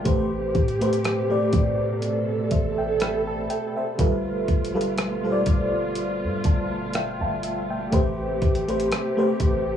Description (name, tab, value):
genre	contemporary R&B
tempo	61 BPM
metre	4/4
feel	swing 54% on 16ths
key	A minor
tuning	A4 = 439 Hz
part	FM electric piano with tremolo	accompaniment	0.0-9.8 s	G3 to B5	-24 LUFS	left 1 dB	cassette tape
part	warm studio string section	sustained chords	0.0-9.8 s	B2 to A4	-29 LUFS	right 3 dB	cassette tape
part	warm 808-style bass	bass	0.0-9.8 s	G1 to A2	-31 LUFS	equal	none
part	dusty soul sampler-style drum kit	drums	0.1-9.7 s	hi-hat, kick drum, rim click	-23 LUFS	equal	none
room	light reverb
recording	home recording on cassette, small room ambience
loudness	-21 LUFS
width	side -9 dB against mid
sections	0.0-9.8 A section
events	FM electric piano fill 6.0-7.9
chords	0.1 Am9; 4.0 G9; 7.9 Am9